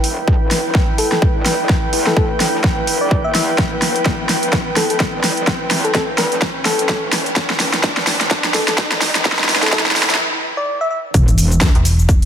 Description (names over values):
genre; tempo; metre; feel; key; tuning
bass house; 127 BPM; 4/4; swing 58% on 16ths; E minor; A4 = 435 Hz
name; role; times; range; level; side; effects
metallic wobble bass; bass; 0.0-11.7 s; E1 to E2; -25 LUFS; equal; chorus, tube saturation, sidechain pumping, high-pass filter
big-room dance drum kit; drums; 0.0-12.3 s; hi-hat, shaker, snare drum; -18 LUFS; equal; overdrive
riser and sub drop; sound effects; 0.0-12.3 s; none; -25 LUFS; right 1 dB; none
airy breathy pad; texture; 0.0-10.2 s; E4 to G5; -22 LUFS; equal; chorus, sidechain pumping
electronic kick drum; drums; 0.3-12.2 s; none; -16 LUFS; equal; overdrive
soft struck synth lead; melody; 1.0-11.0 s; A4 to E5; -23 LUFS; left 2 dB; chorus, dub echo
metallic FM bass; bass; 11.8-12.2 s; E1; -14 LUFS; equal; overdrive, sidechain pumping
room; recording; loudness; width
moderate lush hall reverb, RT60 1.9 s; high-pass filter; -14 LUFS; side -8 dB against mid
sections
0.0-11.1 A section; 11.1-12.3 B section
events
build-up 0.0-11.1; drum fill 0.0-10.2; riser 0.0-10.2; filter sweep 0.0-11.1; break 10.2-11.1; drop 11.1-12.3; impact 11.1-12.3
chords
0.0 Em; 11.1 N.C.